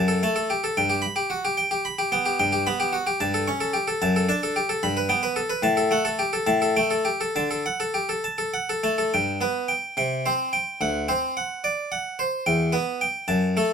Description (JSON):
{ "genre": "classical, baroque-style suite movement for harpsichord", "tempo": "73 BPM (dotted quarters)", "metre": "6/8", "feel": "rubato", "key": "D major, G major from 9.1 s", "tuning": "A4 = 440 Hz", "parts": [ { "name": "harpsichord", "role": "solo", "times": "0.0-13.7 s", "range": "D2 to C#6", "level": "-22 LUFS", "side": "equal", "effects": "none" } ], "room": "light reverb", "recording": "close, detailed microphones", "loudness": "-22 LUFS", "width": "side -7 dB against mid", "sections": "0.0-9.1 A section; 9.1-13.7 A section", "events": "none", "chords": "0.0 F#m; 0.8 G; 3.2 A7/G; 4.0 D/F#; 4.8 Gadd9; 5.6 F#m/A; 6.5 Gsus2/A; 7.4 D; 9.1 G; 10.0 C5; 10.8 D7; 12.5 Em", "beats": "| 0.76 1.58 | 2.38 3.21 | 4.02 4.83 | 5.65 6.48 | 7.35 8.24 | 9.12 9.96 | 10.81 11.64 | 12.47 13.29" }